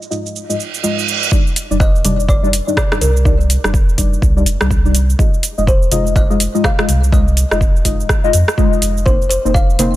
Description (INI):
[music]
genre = afro house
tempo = 124 BPM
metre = 4/4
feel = swing 60% on 16ths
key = unclear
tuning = A4 = 440 Hz
[part]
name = afro-pop drum kit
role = drums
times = 0.0-9.9 s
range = hi-hat, rim click, shaker, toms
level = -20 LUFS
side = right 1 dB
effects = none
[part]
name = deep mellow chord stab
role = stabs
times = 0.1-10.0 s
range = G3 to Eb5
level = -19 LUFS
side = left 3 dB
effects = chorus, phaser, sidechain pumping, dub echo
[part]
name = reverse cymbal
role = sound effects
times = 0.6-1.3 s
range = none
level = -20 LUFS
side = right 8 dB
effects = none
[part]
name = electronic kick drum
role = drums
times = 1.3-9.7 s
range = none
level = -14 LUFS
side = equal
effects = none
[part]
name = warm sub bass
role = bass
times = 1.7-10.0 s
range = Eb1 to F2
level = -16 LUFS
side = equal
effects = sidechain pumping
[part]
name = kalimba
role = melody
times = 1.8-10.0 s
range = Bb4 to F5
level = -22 LUFS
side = equal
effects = digital delay
[sound]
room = little or no reverb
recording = low-pass filter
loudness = -12 LUFS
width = side -15 dB against mid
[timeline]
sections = 0.0-1.3 A section; 1.3-10.0 B section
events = filter sweep 0.0-1.3; reverse cymbal 0.6-1.3; drop 1.3-10.0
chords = 0.0 Fm7; 1.3 Ebmaj7; 5.2 Fm7; 9.1 Bbsus4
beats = 0.35 0.83 | 1.32 1.80 2.29 2.77 | 3.25 3.74 4.22 4.71 | 5.19 5.67 6.16 6.64 | 7.12 7.61 8.09 8.58 | 9.06 9.54